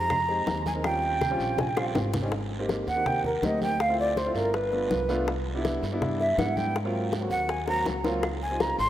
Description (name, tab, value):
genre	Afro-Cuban jazz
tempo	162 BPM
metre	4/4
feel	straight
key	Ab major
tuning	A4 = 440 Hz
part	breathy mellow jazz flute	melody	0.0-8.9 s	Bb4 to C6	-27 LUFS	right 1 dB	none
part	warm grand piano	accompaniment	0.0-8.9 s	Gb3 to Bb4	-31 LUFS	equal	none
part	upright bass	bass	0.0-8.9 s	G1 to Ab2	-32 LUFS	equal	none
part	bongos	percussion	0.1-8.9 s	none	-33 LUFS	left 4 dB	none
part	claves	percussion	0.1-2.0, 8.2-8.4 s	none	-45 LUFS	right 4 dB	none
part	congas	percussion	0.1-8.9 s	none	-36 LUFS	left 1 dB	none
part	guiro	percussion	0.1-8.9 s	none	-44 LUFS	right 4 dB	none
room	wet lush hall reverb, RT60 2.8 s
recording	rough home demo mix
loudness	-24 LUFS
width	side -12 dB against mid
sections	0.0-2.3 A section; 2.3-8.9 B section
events	drum fill 0.8-2.3, 7.7-8.2; flute solo 2.3-8.9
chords	0.0 Fm7; 0.8 Eb13; 2.3 Abmaj7; 3.8 Dm7; 4.5 G7; 5.3 Cmaj9; 6.8 Ab13; 8.2 Dbmaj9#11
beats	0.10 0.47 | 0.84 1.21 1.58 1.95 | 2.32 2.69 3.06 3.43 | 3.80 4.17 4.54 4.91 | 5.28 5.65 6.02 6.39 | 6.76 7.13 7.50 7.87 | 8.23 8.61